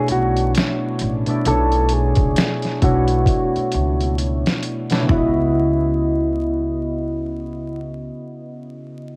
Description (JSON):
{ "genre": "lo-fi hip hop", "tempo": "66 BPM", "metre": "4/4", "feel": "swing 58% on 16ths", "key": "C# phrygian", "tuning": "A4 = 442 Hz", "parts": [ { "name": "mellow electric guitar", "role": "melody", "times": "0.0-7.8 s", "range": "E4 to A4", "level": "-24 LUFS", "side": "equal", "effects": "low-pass filter, cassette tape, tape echo" }, { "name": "warm analog keys", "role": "accompaniment", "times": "0.0-9.2 s", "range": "B2 to D#5", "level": "-25 LUFS", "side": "equal", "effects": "chorus, cassette tape, low-pass filter" }, { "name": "upright bass", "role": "bass", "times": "0.1-8.1 s", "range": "A1 to C#2", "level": "-25 LUFS", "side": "equal", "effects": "transformer saturation" }, { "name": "boom bap sampler-style drum kit", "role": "drums", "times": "0.1-5.3 s", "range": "hi-hat, kick drum, snare drum, toms", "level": "-23 LUFS", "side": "equal", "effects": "overdrive, cassette tape" } ], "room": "light reverb, digital ambience", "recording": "home recording on cassette, vinyl crackle", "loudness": "-19 LUFS", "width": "mono", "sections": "0.0-5.1 A section; 5.1-8.7 B section", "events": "filter sweep 0.0-5.1; drum fill 3.3-5.1", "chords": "0.0 Bm11; 5.1 C#m11", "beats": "0.55 | 1.46 2.37 3.27 4.18 | 5.09 6.00 6.91 7.82" }